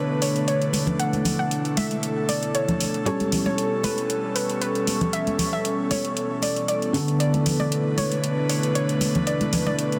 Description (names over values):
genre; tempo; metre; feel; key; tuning
deep house; 116 BPM; 4/4; swing 53% on 16ths; B minor; A4 = 440 Hz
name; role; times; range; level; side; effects
soft round pluck; melody; 0.0-10.0 s; B4 to F#5; -31 LUFS; equal; subtle chorus, tape echo
airy breathy pad; sustained chords; 0.0-10.0 s; G3 to B4; -30 LUFS; equal; chorus
felt-muted upright piano; stabs; 0.0-10.0 s; D3 to A4; -29 LUFS; equal; low-pass filter, digital delay
deep dark ambient pad; texture; 0.0-10.0 s; B3 to C#6; -34 LUFS; equal; chorus, built-in reverb
electronic hi-hat; drums; 0.2-10.0 s; none; -32 LUFS; equal; small room ambience
congas; percussion; 0.7-9.8 s; none; -30 LUFS; equal; none
room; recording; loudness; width
moderate lush hall reverb, RT60 2.8 s; dense, heavily limited modern master; -24 LUFS; mono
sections
0.0-10.0 A section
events
filter sweep on felt piano 0.0-10.0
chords
0.0 Bm7; 3.1 A7; 6.9 Bm7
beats
0.48 | 0.99 1.51 2.03 2.55 | 3.06 3.58 4.10 4.62 | 5.13 5.65 6.17 6.68 | 7.20 7.72 8.23 8.75 | 9.27 9.79